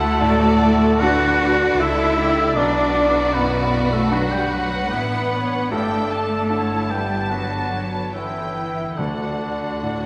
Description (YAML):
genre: cinematic, emotional film score for orchestra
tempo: 70-78 BPM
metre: 4/4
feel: rubato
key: D major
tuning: A4 = 440 Hz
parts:
  - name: warm studio violin section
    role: melody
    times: 0.0-10.1 s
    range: D5 to A5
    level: -31 LUFS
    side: equal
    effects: none
  - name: mellow hollow silver concert flute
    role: second line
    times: 0.0-10.1 s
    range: D5 to F#6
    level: -29 LUFS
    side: equal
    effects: none
  - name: warm cor anglais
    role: second line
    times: 0.0-10.1 s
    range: D4 to F#5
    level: -29 LUFS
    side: equal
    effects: none
  - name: warm studio violin section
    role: second line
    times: 0.0-10.1 s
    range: B3 to A4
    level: -33 LUFS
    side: equal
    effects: none
  - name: bright concert grand piano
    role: accompaniment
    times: 0.0-10.1 s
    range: B1 to F#5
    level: -31 LUFS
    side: equal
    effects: none
  - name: warm studio viola section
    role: accompaniment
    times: 0.0-10.1 s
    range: D3 to D5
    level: -32 LUFS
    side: equal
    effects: none
  - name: mellow French horn section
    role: sustained chords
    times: 0.0-10.1 s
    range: D3 to F#4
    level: -28 LUFS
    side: equal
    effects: none
  - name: warm studio cello section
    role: bass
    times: 0.0-10.1 s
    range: D3 to F#4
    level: -26 LUFS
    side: equal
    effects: none
  - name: warm studio double bass section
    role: bass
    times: 0.0-10.1 s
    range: G1 to D2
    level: -30 LUFS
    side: equal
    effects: none
  - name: timpani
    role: percussion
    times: 9.0-10.1 s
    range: D3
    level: -33 LUFS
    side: equal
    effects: none
room: wet concert hall reverb, RT60 1.9 s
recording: none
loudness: -20 LUFS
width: mono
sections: 0.0-10.1 A section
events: none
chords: 0.0 D; 2.6 Bm; 5.7 G; 9.0 D